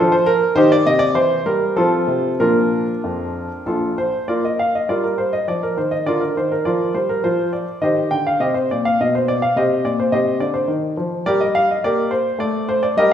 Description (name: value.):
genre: classical, baroque-style suite movement for grand piano.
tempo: 94-107 BPM.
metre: 3/4.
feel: rubato.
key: Bb major.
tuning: A4 = 438 Hz.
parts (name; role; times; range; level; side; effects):
warm baby grand piano; solo; 0.0-13.1 s; Bb1 to G5; -16 LUFS; equal; none.
room: wet recital hall reverb, RT60 1.5 s.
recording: recorded in a church or concert hall.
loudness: -16 LUFS.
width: side -9 dB against mid.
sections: 0.0-4.3 A section; 4.3-13.1 A section.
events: none.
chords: 0.0 Dm/F; 0.6 Cm/Eb; 1.2 Edim; 1.8 F; 2.4 Bb; 4.3 Bb5; 5.5 Cm11; 6.1 Bb/D; 7.8 Cm; 9.0 N.C.; 9.5 Cm; 11.2 Gm; 12.4 N.C..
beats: | 0.57 1.16 1.77 | 2.40 3.04 3.66 | 4.29 4.89 5.47 | 6.06 6.64 7.22 | 7.81 8.39 8.97 | 9.55 10.11 10.68 | 11.25 11.82 12.39 | 12.96.